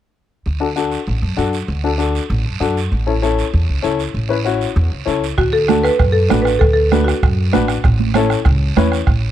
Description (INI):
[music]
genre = latin, cumbia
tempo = 195 BPM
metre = 4/4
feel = straight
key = D major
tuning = A4 = 440 Hz
[part]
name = upright bass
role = bass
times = 0.5-9.3 s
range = A1 to F#2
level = -18 LUFS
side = equal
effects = none
[part]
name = guiro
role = percussion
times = 0.5-9.3 s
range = none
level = -30 LUFS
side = right 12 dB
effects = none
[part]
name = warm upright piano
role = accompaniment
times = 0.6-9.0 s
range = C#4 to B4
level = -20 LUFS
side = left 7 dB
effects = none
[part]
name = buzzing marimba with medium hard mallets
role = melody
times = 5.4-7.6 s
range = F#4 to B4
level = -16 LUFS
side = equal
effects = none
[part]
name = bombo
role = percussion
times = 5.4-9.2 s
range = none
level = -17 LUFS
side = right 2 dB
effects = none
[part]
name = congas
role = percussion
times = 5.7-8.9 s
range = none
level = -20 LUFS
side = right 16 dB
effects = none
[sound]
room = small room ambience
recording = dry, close 1970s-style studio recording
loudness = -14 LUFS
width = side -11 dB against mid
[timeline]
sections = 0.5-5.4 A section; 5.4-9.3 B section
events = none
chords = 0.5 D; 2.9 A; 5.4 D; 7.8 A